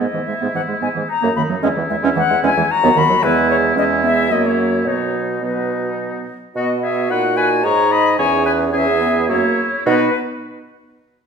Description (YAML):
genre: quick classical-period movement for wind quintet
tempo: 110 BPM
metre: 3/4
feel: straight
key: B major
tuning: A4 = 440 Hz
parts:
  - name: bright concert flute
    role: melody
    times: 0.0-10.2 s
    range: B4 to B5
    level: -19 LUFS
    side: left 6 dB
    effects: none
  - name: clear oboe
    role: second line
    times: 0.0-10.1 s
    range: D#4 to D#5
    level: -22 LUFS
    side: left 1 dB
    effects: none
  - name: warm French horn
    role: accompaniment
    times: 0.0-10.1 s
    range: F#3 to D#4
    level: -25 LUFS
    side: equal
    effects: none
  - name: warm clarinet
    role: accompaniment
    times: 0.0-10.1 s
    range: D#3 to G#4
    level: -22 LUFS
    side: right 8 dB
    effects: none
  - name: warm bassoon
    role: bass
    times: 0.0-10.1 s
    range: D#2 to B2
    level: -22 LUFS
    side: right 3 dB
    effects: none
room: wet recital hall reverb, RT60 1.4 s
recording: minimal, uncompressed stereo recording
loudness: -14 LUFS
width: side -6 dB against mid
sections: 0.0-6.6 A section; 6.6-9.9 B section; 9.9-11.3 C section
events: none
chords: 0.0 E/G#; 1.1 D#m; 1.6 C#m/E (rootless); 2.7 B; 3.2 E; 3.8 C#m/E; 4.3 F#7; 4.9 B; 7.6 G#m; 8.2 C#m/E; 9.3 F#7; 9.9 B